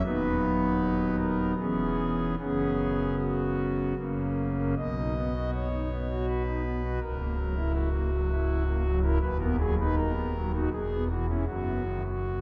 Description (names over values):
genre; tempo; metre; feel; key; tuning
classical, chorale-style piece for pipe organ; 74-82 BPM; 3/4; rubato; B major; A4 = 440 Hz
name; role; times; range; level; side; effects
pipe organ, foundations; solo; 0.0-12.4 s; C#1 to D#5; -29 LUFS; equal; none
room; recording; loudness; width
wet church reverb, RT60 3.6 s; none; -29 LUFS; mono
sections
0.0-4.8 A section; 4.8-12.4 B section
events
none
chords
0.1 B/D#; 1.6 C#m7/E; 2.4 F#sus4; 4.0 F#; 4.8 B; 7.0 F#7/C#; 9.2 B/D#; 10.7 C#m7/E; 11.5 B/F#